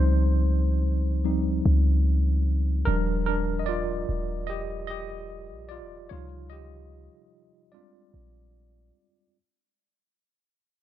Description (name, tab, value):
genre	contemporary R&B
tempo	74 BPM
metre	4/4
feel	straight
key	Eb major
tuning	A4 = 442 Hz
part	tine electric piano	accompaniment	0.0-9.4 s	C3 to Eb5	-30 LUFS	right 1 dB	fast stereo tremolo
part	warm 808-style bass	bass	0.0-8.9 s	Eb1 to Db2	-24 LUFS	equal	none
room	digital ambience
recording	none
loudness	-23 LUFS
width	side -12 dB against mid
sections	0.0-9.4 A section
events	fade-out 0.0-9.4; tine electric piano solo 0.0-9.4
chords	0.0 Dbmaj9#11; 2.9 Ebmaj9; 6.1 Dbmaj9#11; 7.7 Bb13